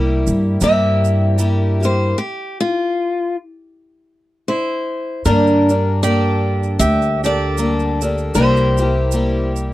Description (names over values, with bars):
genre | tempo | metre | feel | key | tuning
acoustic folk duo or small band | 78 BPM | 4/4 | swing 56% on 8ths | G dorian | A4 = 436 Hz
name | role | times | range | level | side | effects
picked twelve-string acoustic guitar | accompaniment | 0.0-9.7 s | G2 to A4 | -19 LUFS | left 1 dB | none
upright bass | bass | 0.0-9.7 s | C2 to G2 | -17 LUFS | right 1 dB | none
tube shaker | percussion | 0.3-9.7 s | none | -30 LUFS | right 20 dB | none
picked steel-string acoustic guitar | melody | 0.6-9.5 s | F4 to E5 | -20 LUFS | left 2 dB | none
lap resonator guitar | second line | 4.5-9.5 s | D4 to G4 | -23 LUFS | right 4 dB | none
room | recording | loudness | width
light reverb | dry, close 1970s-style studio recording | -14 LUFS | side -16 dB against mid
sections
0.0-5.3 A section; 5.3-9.7 B section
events
steel-string acoustic guitar solo 0.0-5.3; stop 2.2-5.3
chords
0.0 C7; 2.2 N.C.; 5.3 Gmadd9; 8.3 C7